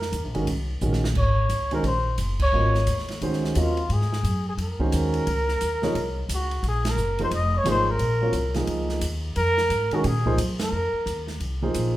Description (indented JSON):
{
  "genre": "modal jazz",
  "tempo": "176 BPM",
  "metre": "4/4",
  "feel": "swing 63% on 8ths",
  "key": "Bb minor",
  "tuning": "A4 = 440 Hz",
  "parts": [
    { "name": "breathy trumpet", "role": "melody", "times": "0.0-11.3 s", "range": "F4 to Eb5", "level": "-26 LUFS", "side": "equal", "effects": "none" },
    { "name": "upright bass", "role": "bass", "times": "0.0-12.0 s", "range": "F1 to Bb2", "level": "-25 LUFS", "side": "equal", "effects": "none" },
    { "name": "open jazz drum kit", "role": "drums", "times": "0.0-11.8 s", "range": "crash cymbal, hi-hat, kick drum, ride cymbal, snare drum", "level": "-32 LUFS", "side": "right 1 dB", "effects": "none" },
    { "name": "warm grand piano", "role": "accompaniment", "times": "0.3-12.0 s", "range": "Eb3 to Eb5", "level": "-27 LUFS", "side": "right 2 dB", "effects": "none" }
  ],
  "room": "moderate recital hall reverb, RT60 1.3 s",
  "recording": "recorded in a church or concert hall",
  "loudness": "-22 LUFS",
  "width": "side -15 dB against mid",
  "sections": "0.0-12.0 A section",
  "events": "drum fill 0.8-1.2; band accent 2.4, 6.8, 10.6",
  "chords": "0.0 Bb9sus4; 1.2 Ab9sus4; 6.6 Bb9sus4"
}